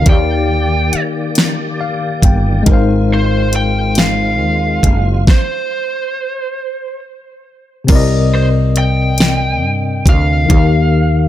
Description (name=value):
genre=slow six-eight R&B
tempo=46 BPM (dotted quarters)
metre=6/8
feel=straight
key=C minor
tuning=A4 = 440 Hz
part: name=lead guitar through a small cranked amp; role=melody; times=0.0-11.3 s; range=C5 to G5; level=-19 LUFS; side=right 2 dB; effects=overdrive
part: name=tine electric piano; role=accompaniment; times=0.0-11.3 s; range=C3 to G5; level=-17 LUFS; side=left 5 dB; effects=medium tremolo
part: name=tonewheel organ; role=sustained chords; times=0.0-5.2 s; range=Eb3 to D5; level=-24 LUFS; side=right 2 dB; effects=overdrive, chorus vibrato, slow rotary speaker
part: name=woody fretless electric bass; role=bass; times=0.0-11.3 s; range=F#1 to G2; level=-15 LUFS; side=right 1 dB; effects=analog chorus
part: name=smooth R&B drum kit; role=drums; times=0.1-10.7 s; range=crash cymbal, hi-hat, kick drum, snare drum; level=-11 LUFS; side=equal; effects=none
room=digital ambience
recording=none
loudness=-11 LUFS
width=side -12 dB against mid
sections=0.0-7.9 A section; 7.9-11.3 A section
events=tine electric piano fill 1.4-2.7; stop 5.3-7.9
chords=0.1 Ebmaj7; 2.7 Ab6; 5.3 N.C.; 7.9 Cm9; 10.5 Eb